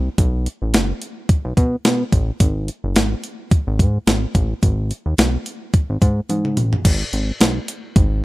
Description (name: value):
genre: early-eighties boogie funk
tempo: 108 BPM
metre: 4/4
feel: swing 56% on 16ths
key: G# minor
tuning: A4 = 441 Hz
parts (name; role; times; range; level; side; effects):
- chorused synth bass; bass; 0.0-8.2 s; F#1 to B2; -19 LUFS; equal; none
- clean 12-bit digital drum machine; drums; 0.2-8.1 s; crash cymbal, hi-hat, kick drum, snare drum, toms; -16 LUFS; equal; none
room: little or no reverb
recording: rough home demo mix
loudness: -16 LUFS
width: side -19 dB against mid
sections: 0.0-6.8 A section; 6.8-8.2 B section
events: drum fill 6.3-6.8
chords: none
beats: | 0.18 0.74 1.29 1.85 | 2.40 2.96 3.52 4.07 | 4.63 5.18 5.74 6.29 | 6.85 7.41 7.96